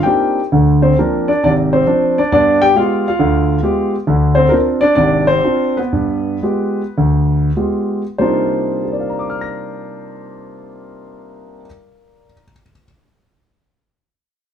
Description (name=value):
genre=solo jazz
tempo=93-138 BPM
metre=4/4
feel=swing 68% on 8ths, rubato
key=C minor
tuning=A4 = 440 Hz
part: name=warm concert grand piano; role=solo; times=0.0-12.8 s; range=Ab1 to Bb6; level=-13 LUFS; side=equal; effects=none
room=moderate studio reverb, RT60 0.5 s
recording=band playing live in one room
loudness=-12 LUFS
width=side -8 dB against mid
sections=0.5-8.2 A section; 8.2-13.3 B section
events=slowing down 4.1-8.2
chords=0.0 Cm11; 0.5 Dm7b5; 2.3 G7b9; 4.1 Dm7b5; 5.9 G7b9; 8.2 Cm11